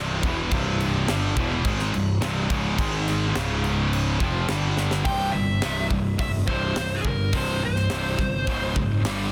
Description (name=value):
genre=heavy metal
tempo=105 BPM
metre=4/4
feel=straight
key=unclear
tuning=A4 = 440 Hz
part: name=high-gain distorted guitar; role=riff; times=0.0-5.1 s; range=C2 to Ab3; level=-33 LUFS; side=equal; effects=none
part: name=scooped high-gain guitar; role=riff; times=0.0-9.3 s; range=C2 to Ab3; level=-31 LUFS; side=equal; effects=distortion
part: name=tight distorted guitar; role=riff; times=0.0-9.3 s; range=C2 to Ab3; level=-31 LUFS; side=equal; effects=distortion
part: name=fuzz picked electric bass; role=bass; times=0.0-9.3 s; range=C1 to Ab1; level=-30 LUFS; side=equal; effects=overdrive
part: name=tight metal drum kit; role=drums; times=0.2-9.2 s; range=crash cymbal, hi-hat, kick drum, snare drum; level=-31 LUFS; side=equal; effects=none
part: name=nasal lead guitar with a parked wah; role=melody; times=5.1-8.7 s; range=Ab4 to G5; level=-31 LUFS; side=equal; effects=overdrive, tape echo
room=small room ambience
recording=dense, heavily limited modern master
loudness=-24 LUFS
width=mono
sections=0.0-5.1 A section; 5.1-9.3 B section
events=drum fill 4.8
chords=0.0 C; 2.8 Ab5; 3.4 Db5; 4.2 F5; 4.5 G5; 5.1 C5; 8.5 Db5